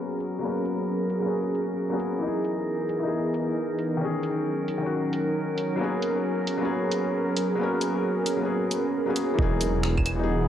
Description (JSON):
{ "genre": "future garage", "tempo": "134 BPM", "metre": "4/4", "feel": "swing 64% on 16ths", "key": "G# minor", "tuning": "A4 = 440 Hz", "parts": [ { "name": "felt-muted upright piano", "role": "accompaniment", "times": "0.0-10.5 s", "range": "D#3 to A#4", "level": "-29 LUFS", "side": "left 4 dB", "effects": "sidechain pumping, low-pass filter, analog delay" }, { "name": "warbly tape-like pad", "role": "sustained chords", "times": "0.0-10.5 s", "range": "E3 to A#4", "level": "-28 LUFS", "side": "right 2 dB", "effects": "chorus, built-in reverb, sidechain pumping" }, { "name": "drifting glass-harmonics texture", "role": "texture", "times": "0.0-9.4 s", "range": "A#4", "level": "-35 LUFS", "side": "right 5 dB", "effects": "chorus, built-in reverb" }, { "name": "garage drum kit", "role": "drums", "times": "0.2-10.2 s", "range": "claves, finger snaps, hi-hat", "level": "-32 LUFS", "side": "right 2 dB", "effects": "low-pass filter on hats, studio reverb, cassette tape, low-pass filter on snare, low-pass filter on perc" }, { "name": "dark detuned saw bass", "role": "bass", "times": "9.4-10.5 s", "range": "E1", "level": "-26 LUFS", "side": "right 1 dB", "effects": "sidechain pumping" }, { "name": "electronic kick drum", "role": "drums", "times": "9.4-10.0 s", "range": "none", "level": "-25 LUFS", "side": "right 1 dB", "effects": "studio reverb, cassette tape" } ], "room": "moderate studio ambience, RT60 0.5 s", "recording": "home recording on cassette, low-pass filter", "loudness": "-24 LUFS", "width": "side -10 dB against mid", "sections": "0.0-9.4 A section; 9.4-10.5 B section", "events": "filter sweep on drum 0.0-9.4; filter sweep on ambient pad 0.0-9.4; filter sweep on felt piano 0.0-9.4; filter sweep 0.0-9.4", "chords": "0.0 G#m11; 2.2 Emaj7; 4.0 D#m7; 5.8 G#m11; 9.4 Emaj7" }